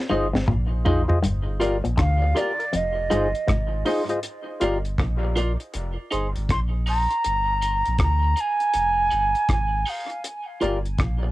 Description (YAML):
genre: dub reggae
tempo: 80 BPM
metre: 4/4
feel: swing 64% on 16ths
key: G phrygian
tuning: A4 = 440 Hz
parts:
  - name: clean electric guitar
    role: accompaniment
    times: 0.1-11.3 s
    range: Eb4 to D5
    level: -29 LUFS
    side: right 1 dB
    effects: high-pass filter, cassette tape, dub echo
  - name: electric guitar with an envelope filter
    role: riff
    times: 0.1-3.7 s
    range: F2 to D3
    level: -29 LUFS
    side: left 2 dB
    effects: cassette tape, dub echo
  - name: percussive organ stab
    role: stabs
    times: 0.1-4.8, 10.6-10.8 s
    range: F4 to Eb5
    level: -28 LUFS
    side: left 2 dB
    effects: chorus, high-pass filter, cassette tape, dub echo
  - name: warm sub bass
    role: bass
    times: 0.1-11.3 s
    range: F1 to D2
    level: -25 LUFS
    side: equal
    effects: none
  - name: deep reggae drum kit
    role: drums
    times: 0.4-11.2 s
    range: hi-hat, kick drum, rim click, snare drum, toms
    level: -25 LUFS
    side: equal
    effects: none
  - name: mellow silver concert flute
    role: melody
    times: 2.0-10.3 s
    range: D5 to C6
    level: -24 LUFS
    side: right 2 dB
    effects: cassette tape, dub echo
room: light reverb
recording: home recording on cassette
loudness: -20 LUFS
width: side -17 dB against mid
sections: 0.0-11.3 A section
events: break 0.0-1.2; drum fill 0.0-1.2; filter sweep 4.2-10.2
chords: 0.0 Fm7; 1.2 Gm7; 2.7 Fm7; 4.2 Gm7; 5.7 Fm7; 7.2 Gm7; 8.7 Fm7; 10.2 Gm7